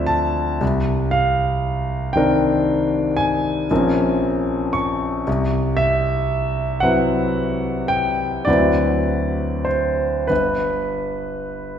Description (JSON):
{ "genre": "classical, impressionist solo piano", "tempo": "32-39 BPM (dotted quarters)", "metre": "9/8", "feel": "rubato", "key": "unclear", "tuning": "A4 = 440 Hz", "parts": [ { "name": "warm concert grand piano", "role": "solo", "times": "0.0-11.8 s", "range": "G1 to Db6", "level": "-18 LUFS", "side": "equal", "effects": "none" } ], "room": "wet recital hall reverb, RT60 1.6 s", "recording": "recorded in a church or concert hall", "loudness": "-17 LUFS", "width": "side -8 dB against mid", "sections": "0.0-11.8 A section", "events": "none", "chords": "0.0 Dm9; 0.6 Cm9; 3.7 Bbm9; 5.3 Cmaj7#11; 8.5 D13; 10.3 G" }